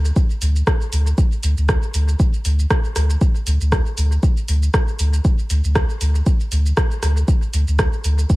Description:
dub techno; 118 BPM; 4/4; swing 56% on 16ths; A4 = 437 Hz
soft dub sub bass; bass; 0.0-8.2 s; D2; -16 LUFS; equal; sidechain pumping
deep house drum kit; drums; 0.1-8.4 s; hi-hat, rim click, shaker; -25 LUFS; right 1 dB; dub echo
electronic kick drum; drums; 0.2-8.4 s; -17 LUFS; equal
little or no reverb; -16 LUFS; side -20 dB against mid
0.0-8.4 A section

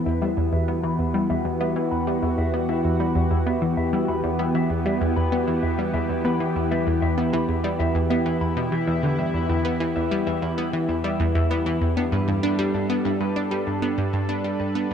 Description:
ambient, sequencer-driven space music; 97 BPM; 4/4; straight; E minor; A4 = 440 Hz
lush unison pad; sustained chords; 0.0-14.9 s; E3 to B5; -25 LUFS; equal; chorus
electric guitar through a small old amp; arpeggios; 0.1-14.9 s; D4 to B5; -31 LUFS; left 1 dB; auto-pan, low-pass filter, tape echo
analog pluck; riff; 0.1-14.9 s; E2 to D4; -24 LUFS; equal; chorus, phaser, tape echo
moderate plate reverb, RT60 2.8 s; dark, warm production; -21 LUFS; side -8 dB against mid
0.0-14.9 A section
filter sweep on clean electric guitar 0.0-14.9; fade-out 12.8-14.9
0.0 Em; 12.0 G

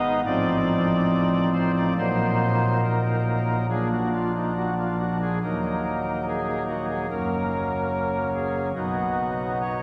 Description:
classical, chorale-style piece for pipe organ; 69-73 BPM; 4/4; rubato; Eb minor; A4 = 439 Hz
pipe organ, cornet; solo; 0.0-9.8 s; Eb1 to Eb5; -24 LUFS; equal
wet cathedral reverb, RT60 4.5 s; -24 LUFS; mono
0.0-9.8 A section
0.3 F7/A; 2.0 Ebm/Bb; 3.7 Bb; 5.4 Ebm; 7.1 Gb; 8.7 B

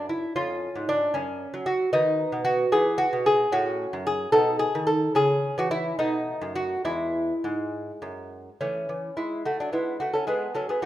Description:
classical, baroque-style dance for lute; 68-77 BPM (dotted quarters); 6/8; rubato; E major; A4 = 443 Hz
lute; solo; 0.0-10.9 s; E2 to A4; -23 LUFS; equal
moderate recital hall reverb, RT60 1.5 s; minimal, uncompressed stereo recording; -23 LUFS; side -13 dB against mid
0.0-8.6 A section; 8.6-10.9 A section
0.4 C#/E#; 1.2 N.C.; 1.9 B/D#; 2.7 E5; 3.5 F#m/A; 4.3 B; 5.2 C#m; 6.0 B7; 6.8 E; 8.6 A/E

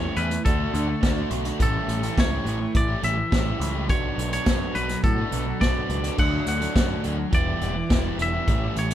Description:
indie rock; 105 BPM; 4/4; straight; D major; A4 = 443 Hz
twangy electric guitar; melody; 0.0-8.9 s; A4 to F#5; -29 LUFS; equal
lush unison pad; sustained chords; 0.0-8.9 s; D4 to D6; -41 LUFS; equal
crunchy overdriven guitar; riff; 0.0-8.9 s; E3 to G4; -31 LUFS; left 5 dB
crunchy overdriven guitar; riff; 0.0-8.9 s; A2 to F#4; -31 LUFS; right 7 dB
growling picked electric bass; bass; 0.0-8.9 s; E1 to A2; -28 LUFS; equal; overdrive
unplugged drum kit; drums; 0.2-8.9 s; crash cymbal, hi-hat, kick drum, snare drum; -24 LUFS; equal
light reverb; band playing live in one room; -21 LUFS; side -11 dB against mid
0.0-8.9 A section
0.5 Dmaj7; 1.6 A7; 3.9 Bm7; 6.2 Dmaj7; 7.3 Em7

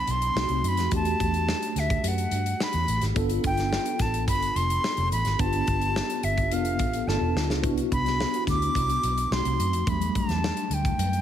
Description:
polished 1980s jazz-funk pop; 107 BPM; 4/4; straight; E minor; A4 = 440 Hz
breathy silver concert flute; melody; 0.0-11.2 s; E5 to D6; -28 LUFS; equal; tape echo
mellow tine electric piano; accompaniment; 0.0-11.2 s; F#3 to A4; -30 LUFS; left 1 dB; medium stereo tremolo, analog chorus
vintage muted fingered electric bass; bass; 0.1-11.2 s; E1 to G2; -28 LUFS; equal
modern studio drum kit; drums; 0.1-11.2 s; hi-hat, kick drum, snare drum; -30 LUFS; left 1 dB
studio reverb; -23 LUFS; side -10 dB against mid
0.0-11.2 A section
drum fill 7.1-7.6
0.4 B7b9; 0.9 Em11; 3.2 G9; 7.6 Cmaj9#11; 9.3 B7b9; 9.9 Em11

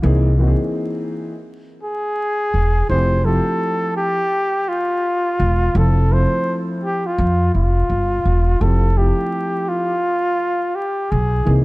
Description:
hip hop, jazz-hop; 84 BPM; 4/4; swing 62% on 16ths; F major; A4 = 443 Hz
dark grand piano; accompaniment; 0.0-11.6 s; E3 to A4; -23 LUFS; equal
upright bass; bass; 0.0-11.6 s; E1 to F2; -16 LUFS; equal
breathy flugelhorn; melody; 1.8-11.6 s; F4 to C5; -20 LUFS; equal; slapback echo
light reverb, small room ambience; dark, warm production, vinyl crackle; -16 LUFS; side -21 dB against mid
0.0-8.6 A section; 8.6-11.6 A section
0.0 C7alt; 2.9 Fmaj9

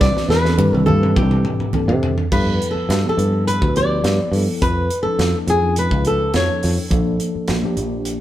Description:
electric jazz fusion; 104 BPM; 4/4; straight; G mixolydian; A4 = 440 Hz
flamenco guitar; melody; 0.0-6.8 s; G4 to D5; -21 LUFS; equal
mellow tine electric piano; accompaniment; 0.0-8.2 s; E3 to B4; -24 LUFS; equal; medium stereo tremolo
fingered electric bass; bass; 0.0-8.2 s; Bb1 to C3; -19 LUFS; equal
crisp fusion drum kit; drums; 0.0-8.2 s; crash cymbal, hi-hat, kick drum, snare drum, toms; -22 LUFS; equal
congas; percussion; 0.0-2.1 s; -25 LUFS; right 2 dB
moderate stone room reverb, RT60 1.5 s; band playing live in one room; -15 LUFS; side -13 dB against mid
0.0-2.3 A section; 2.3-8.2 B section
drum fill 0.0-2.3
0.0 Cmaj9; 2.3 G13; 4.6 Faug7; 6.9 Bbmaj7

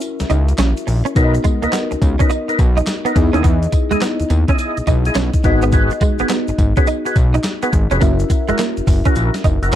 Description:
R&B, new jack swing; 105 BPM; 4/4; swing 64% on 16ths; B major; A4 = 440 Hz
mellow FM electric piano; accompaniment; 0.0-9.8 s; B3 to E5; -22 LUFS; left 3 dB; chorus
clean 12-bit digital drum machine; drums; 0.0-9.8 s; handclaps, hi-hat, kick drum, snare drum, tambourine; -16 LUFS; equal
egg shaker; percussion; 0.0-9.7 s; -40 LUFS; left 9 dB
fat analog bass; bass; 0.2-9.8 s; E#1 to E2; -16 LUFS; equal
direct-recorded clean electric guitar; riff; 0.3-9.8 s; G#3 to D#4; -22 LUFS; right 6 dB; ensemble chorus
overdriven tonewheel organ; stabs; 1.2-9.7 s; D#4 to D#5; -23 LUFS; left 1 dB; chorus vibrato, slow rotary speaker
digital ambience; dark, warm production; -13 LUFS; side -11 dB against mid
0.0-9.8 A section
break 0.0-1.2
0.0 F#7; 1.2 Bmaj7; 3.2 Emaj7; 5.4 G#m7; 8.0 F#7

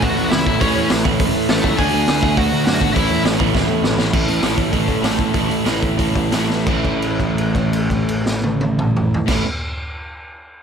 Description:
punk rock; 170-204 BPM; 4/4; straight; A major; A4 = 440 Hz
nasal lead guitar with a parked wah; melody; 0.0-3.2 s; A3 to G#5; -21 LUFS; left 2 dB; overdrive
crunchy overdriven guitar; riff; 0.0-9.4 s; A2 to A4; -22 LUFS; left 14 dB
overdriven semi-hollow guitar; riff; 0.0-9.4 s; A2 to D4; -21 LUFS; right 14 dB
fuzz picked electric bass; bass; 0.0-9.4 s; E1 to A2; -24 LUFS; equal; overdrive
raw garage drum kit; drums; 0.0-9.4 s; crash cymbal, hi-hat, kick drum, snare drum, toms; -20 LUFS; equal
little or no reverb; -15 LUFS; side -7 dB against mid
0.0-4.1 A section; 4.1-6.7 B section; 6.7-9.5 C section
drum fill 3.5-4.1, 6.5; slowing down 4.1-6.7; held note 6.7-9.3
0.0 A; 1.8 D; 3.0 A

